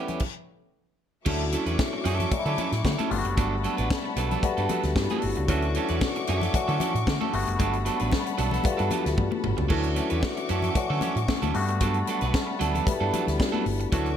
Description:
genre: disco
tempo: 114 BPM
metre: 4/4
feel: straight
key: unclear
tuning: A4 = 440 Hz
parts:
  - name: barky tine electric piano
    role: accompaniment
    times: 0.0-14.2 s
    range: E3 to A4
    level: -30 LUFS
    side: left 5 dB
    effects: overdrive, phaser
  - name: electric guitar at the edge of break-up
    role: accompaniment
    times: 0.0-14.1 s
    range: E3 to B4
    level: -31 LUFS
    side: right 10 dB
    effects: none
  - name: warm studio string section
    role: sustained chords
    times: 0.0-14.2 s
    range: G3 to D6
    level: -34 LUFS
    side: left 2 dB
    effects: none
  - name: tight funk drum kit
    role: drums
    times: 0.1-14.2 s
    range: crash cymbal, hi-hat, kick drum, snare drum, toms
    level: -28 LUFS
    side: equal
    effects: gated reverb
  - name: congas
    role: percussion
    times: 0.1-14.1 s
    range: none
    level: -35 LUFS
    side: left 6 dB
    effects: none
  - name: picked electric bass with an envelope filter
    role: bass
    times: 1.3-14.2 s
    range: F#1 to D3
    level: -28 LUFS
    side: right 1 dB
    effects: none
room: light reverb, small room ambience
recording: none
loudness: -23 LUFS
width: side -9 dB against mid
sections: 0.0-1.3 A section; 1.3-14.2 B section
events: stop 0.2-1.3; drum fill 9.2-9.7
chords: 0.0 A9; 1.3 Dmaj9; 3.1 Gmaj9; 5.5 Dmaj9; 7.3 Gmaj9; 9.7 Dmaj9; 11.6 Gmaj9

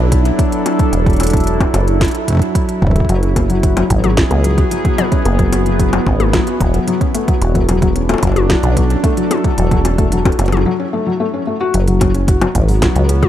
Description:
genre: IDM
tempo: 111 BPM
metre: 4/4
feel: straight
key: unclear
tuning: A4 = 440 Hz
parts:
  - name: warbly tape-like pad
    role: sustained chords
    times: 0.0-13.3 s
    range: F#3 to A4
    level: -20 LUFS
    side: right 1 dB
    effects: chorus, built-in reverb
  - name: deep acid bass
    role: bass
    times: 0.0-13.3 s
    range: D1 to C#2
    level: -15 LUFS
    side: equal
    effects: none
  - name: electronic kick drum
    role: drums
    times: 0.1-13.3 s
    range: none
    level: -16 LUFS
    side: equal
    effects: overdrive
  - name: organic electronic drum kit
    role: drums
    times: 0.1-13.3 s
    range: bongos, hi-hat, snare drum, toms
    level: -22 LUFS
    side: left 3 dB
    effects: overdrive, tape echo
  - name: felt-muted upright piano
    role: arpeggios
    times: 3.1-13.3 s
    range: E3 to F#4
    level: -18 LUFS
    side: left 3 dB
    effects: tape echo
room: light reverb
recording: dark, warm production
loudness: -12 LUFS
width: side -11 dB against mid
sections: 0.0-11.7 A section; 11.7-13.3 B section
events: break 10.7-11.7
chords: 0.0 E9sus4; 3.1 F#9sus4; 7.1 E9sus4; 11.7 F#sus4

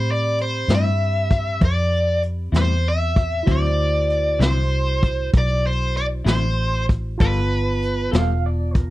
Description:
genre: slow blues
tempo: 64 BPM (dotted quarters)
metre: 12/8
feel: straight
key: unclear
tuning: A4 = 440 Hz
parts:
  - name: smooth overdriven lead guitar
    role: melody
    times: 0.0-8.1 s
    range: B4 to E5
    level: -23 LUFS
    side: equal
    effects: none
  - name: barky tine electric piano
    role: accompaniment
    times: 0.0-8.9 s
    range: B3 to B5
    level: -31 LUFS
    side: right 3 dB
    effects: overdrive
  - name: vintage muted fingered electric bass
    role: bass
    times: 0.0-8.9 s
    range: E1 to A2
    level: -21 LUFS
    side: equal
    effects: none
  - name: vintage brush drum kit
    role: drums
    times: 0.4-8.9 s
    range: hi-hat, kick drum, snare drum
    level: -19 LUFS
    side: equal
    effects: none
  - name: semi-hollow electric guitar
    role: accompaniment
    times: 0.7-8.3 s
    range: A2 to A4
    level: -26 LUFS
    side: left 4 dB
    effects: tremolo
  - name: electric guitar through a small old amp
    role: second line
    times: 8.2-8.9 s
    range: Bb4 to F5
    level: -29 LUFS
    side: right 11 dB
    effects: tremolo
room: small room ambience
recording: dry, close 1970s-style studio recording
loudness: -18 LUFS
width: side -16 dB against mid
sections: 0.0-8.9 A section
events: none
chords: 0.0 Am7; 3.5 D9; 7.2 G9

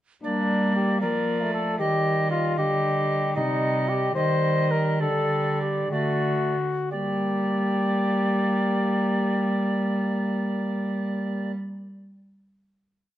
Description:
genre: classical, renaissance-style consort dance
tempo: 58-78 BPM (dotted quarters)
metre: 6/8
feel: straight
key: G minor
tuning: A4 = 440 Hz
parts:
  - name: warm cornet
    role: melody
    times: 0.2-11.5 s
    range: D4 to C5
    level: -27 LUFS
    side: left 4 dB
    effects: none
  - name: alto recorder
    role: second line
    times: 0.2-11.5 s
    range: D5 to Eb5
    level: -30 LUFS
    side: right 5 dB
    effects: none
  - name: bright trombone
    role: accompaniment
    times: 0.2-11.5 s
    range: G3 to Bb3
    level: -30 LUFS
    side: left 1 dB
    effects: none
  - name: dark cello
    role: bass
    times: 0.2-11.5 s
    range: C3 to G3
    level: -27 LUFS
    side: right 2 dB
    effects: none
room: moderate large studio reverb, RT60 1.2 s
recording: dark, warm production, nothing above 10.8 kHz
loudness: -22 LUFS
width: side -13 dB against mid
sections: 0.2-6.9 A section; 6.9-11.0 final chord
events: slowing down 2.6-6.9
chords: 0.2 Gm; 1.8 Eb; 3.4 Cm; 5.0 Dsus4; 5.9 D; 6.9 Gm

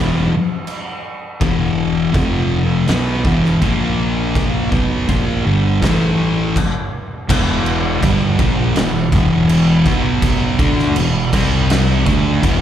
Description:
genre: stoner and doom metal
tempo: 82 BPM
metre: 4/4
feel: straight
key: E minor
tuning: A4 = 439 Hz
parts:
  - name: thick fuzz guitar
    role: riff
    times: 0.0-12.6 s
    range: E2 to D4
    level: -16 LUFS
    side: equal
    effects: distortion
  - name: fuzz fingered electric bass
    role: bass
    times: 0.0-12.6 s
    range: E1 to D2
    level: -20 LUFS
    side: equal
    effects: overdrive
  - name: oversized low-tuned drum kit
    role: drums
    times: 0.7-12.6 s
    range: crash cymbal, kick drum, snare drum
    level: -19 LUFS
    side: equal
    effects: none
room: light reverb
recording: live gig heard through the venue's PA, club reverb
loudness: -13 LUFS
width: side -10 dB against mid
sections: 0.0-7.3 A section; 7.3-12.6 B section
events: stop 6.6-7.3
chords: 0.0 E5; 2.1 F5; 2.9 E5; 3.6 A#5; 4.7 G7#9; 5.8 A5; 6.6 N.C.; 7.3 Em; 9.9 B5; 10.6 E5; 11.3 C5; 12.1 E5

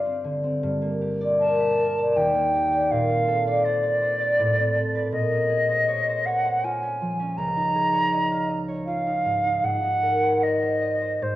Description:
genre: classical, impressionist duo for flute and harp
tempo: 80 BPM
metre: 3/4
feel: rubato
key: G minor, Bb minor from 5.1 s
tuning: A4 = 440 Hz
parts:
  - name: silver concert flute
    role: melody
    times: 0.0-11.4 s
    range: C5 to Bb5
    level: -23 LUFS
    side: right 1 dB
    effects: none
  - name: concert harp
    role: accompaniment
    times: 0.0-11.4 s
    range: Db2 to F5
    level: -24 LUFS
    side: equal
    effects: none
room: moderate recital hall reverb, RT60 1.5 s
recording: worn, warbling old tape, cassette tape, warbly pitch drift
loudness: -21 LUFS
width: side -15 dB against mid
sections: 0.0-11.4 A section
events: none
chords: 0.0 Dm7/G; 0.6 Gm6; 2.1 Ebmaj7; 2.9 Bbmaj9; 4.4 Amadd9; 5.1 Bbm11; 7.4 Db69; 9.6 Abadd9

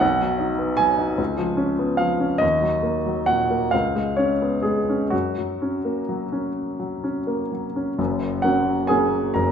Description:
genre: classical, romantic character piece for solo piano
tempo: 40-54 BPM (dotted quarters)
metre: 6/8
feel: rubato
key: F# major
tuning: A4 = 443 Hz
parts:
  - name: warm baby grand piano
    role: solo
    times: 0.0-9.5 s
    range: F#1 to A#5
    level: -20 LUFS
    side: equal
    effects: none
room: wet recital hall reverb, RT60 1.4 s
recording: minimal, uncompressed stereo recording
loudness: -20 LUFS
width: side -8 dB against mid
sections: 0.0-8.0 A section; 8.0-9.5 B section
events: none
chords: 0.0 B; 1.2 C#7; 2.4 D#m; 3.7 C#5; 5.1 F#

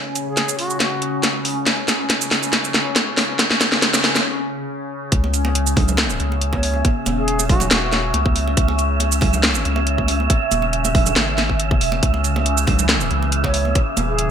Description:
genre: deep dubstep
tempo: 139 BPM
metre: 4/4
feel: swing 53% on 16ths, half-time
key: C# minor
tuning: A4 = 442 Hz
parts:
  - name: overtone-sweeping drone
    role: sustained chords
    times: 0.0-14.3 s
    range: C#3 to C#4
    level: -25 LUFS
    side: left 2 dB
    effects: chorus, built-in reverb, phaser
  - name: soft dub sub bass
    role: bass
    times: 0.2-14.3 s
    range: D#1 to C#2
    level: -22 LUFS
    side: equal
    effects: high-pass filter
  - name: garage drum kit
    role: drums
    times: 0.2-14.3 s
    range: hi-hat, shaker, snare drum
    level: -18 LUFS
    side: equal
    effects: gated reverb
  - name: bright reedy ney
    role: melody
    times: 0.3-1.2, 6.5-8.1, 13.4-14.3 s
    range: F#4 to C#5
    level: -27 LUFS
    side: left 1 dB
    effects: dub echo
  - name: electronic kick drum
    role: drums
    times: 0.4-13.8 s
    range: none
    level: -19 LUFS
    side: equal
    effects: high-pass filter on kick, high-pass filter on room
  - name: wind-like tuned noise texture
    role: texture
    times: 5.8-14.3 s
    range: E5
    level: -25 LUFS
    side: right 7 dB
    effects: built-in reverb, lush chorus
  - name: congas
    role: percussion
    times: 5.2-14.1 s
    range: none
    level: -28 LUFS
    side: right 4 dB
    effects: dub echo
room: light reverb, digital ambience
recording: bright 1980s-style digital production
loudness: -16 LUFS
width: side -8 dB against mid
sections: 0.0-5.1 A section; 5.1-14.3 B section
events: build-up 0.0-5.1; drum fill 0.0-4.3; break 4.3-5.1; drop 5.1-14.3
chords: 0.0 D#7(no3); 5.1 C#m

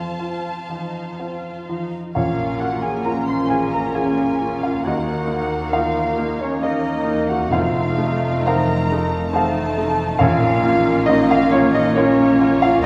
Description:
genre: classical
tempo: 68 BPM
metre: 3/4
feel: rubato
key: Bb minor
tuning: A4 = 435 Hz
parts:
  - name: clear baby grand piano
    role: melody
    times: 0.0-12.9 s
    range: Bb1 to C6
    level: -23 LUFS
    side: equal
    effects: none
  - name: warm symphonic violin section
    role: melody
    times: 0.0-12.9 s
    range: F4 to A5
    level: -38 LUFS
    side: equal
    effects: none
  - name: rich studio violin section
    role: second line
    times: 0.0-12.9 s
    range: C5 to C6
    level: -33 LUFS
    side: equal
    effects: none
  - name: rich symphonic viola section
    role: accompaniment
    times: 0.0-12.9 s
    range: A3 to F4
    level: -34 LUFS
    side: equal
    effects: none
  - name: mellow trumpet section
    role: stabs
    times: 2.1-12.9 s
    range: Db4 to C5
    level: -30 LUFS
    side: equal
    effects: none
  - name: bright concert flute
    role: second line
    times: 2.2-12.9 s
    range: Db5 to C6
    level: -30 LUFS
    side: equal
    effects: none
  - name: clear clarinet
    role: second line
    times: 2.2-12.9 s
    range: Db4 to Eb4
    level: -28 LUFS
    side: equal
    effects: none
  - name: mellow bassoon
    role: accompaniment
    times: 2.2-12.9 s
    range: A3 to Bb3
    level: -30 LUFS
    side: equal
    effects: none
  - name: mellow French horn section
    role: sustained chords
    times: 2.2-12.9 s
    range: A3 to Eb4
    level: -30 LUFS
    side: equal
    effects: none
  - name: clear symphonic double bass section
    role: bass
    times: 2.2-12.9 s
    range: F1 to Eb2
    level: -31 LUFS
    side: equal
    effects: none
  - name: rich symphonic cello section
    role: bass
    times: 2.2-12.9 s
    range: Eb2 to Bb2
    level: -32 LUFS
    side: equal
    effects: none
  - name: timpani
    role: percussion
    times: 7.5-11.5 s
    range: F2 to Bb2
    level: -32 LUFS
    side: equal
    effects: none
room: wet recital hall reverb, RT60 1.8 s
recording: none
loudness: -19 LUFS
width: mono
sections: 0.0-2.2 A section; 2.2-12.9 A section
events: none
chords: 0.0 F; 2.2 Bbm; 4.9 Ebm; 7.5 F7; 10.2 Bbm

